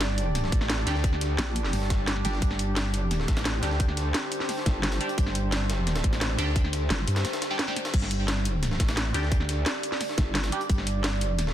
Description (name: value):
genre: dark technical drum and bass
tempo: 174 BPM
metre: 4/4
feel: straight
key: unclear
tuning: A4 = 439 Hz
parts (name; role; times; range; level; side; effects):
- deep dark ambient pad; sustained chords; 0.0-11.5 s; D4 to D5; -34 LUFS; right 1 dB; chorus, built-in reverb, sidechain pumping
- metallic wobble bass; bass; 0.0-11.5 s; G1 to G2; -27 LUFS; equal; chorus, tube saturation, sidechain pumping
- breakbeat sampler-style drum kit; drums; 0.0-11.5 s; hi-hat, snare drum; -36 LUFS; equal; high-pass filter on hats, high-pass filter on snare, high-pass filter on room
- drum and bass drum kit; drums; 0.0-11.5 s; crash cymbal, hi-hat, snare drum; -30 LUFS; equal; none
- electronic kick drum; drums; 0.5-10.8 s; none; -25 LUFS; equal; none
- band-passed chord stab; stabs; 0.9-10.6 s; G3 to G4; -36 LUFS; right 1 dB; phaser, tape echo
- vowel-sweep wobble bass; bass; 1.4-2.4, 4.7-7.1, 10.2-10.5 s; G1 to Bb1; -28 LUFS; equal; chorus
room: light reverb, digital ambience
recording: dense, heavily limited modern master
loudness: -24 LUFS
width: side -11 dB against mid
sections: 0.0-11.5 A section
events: break 7.2-7.9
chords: 0.0 G5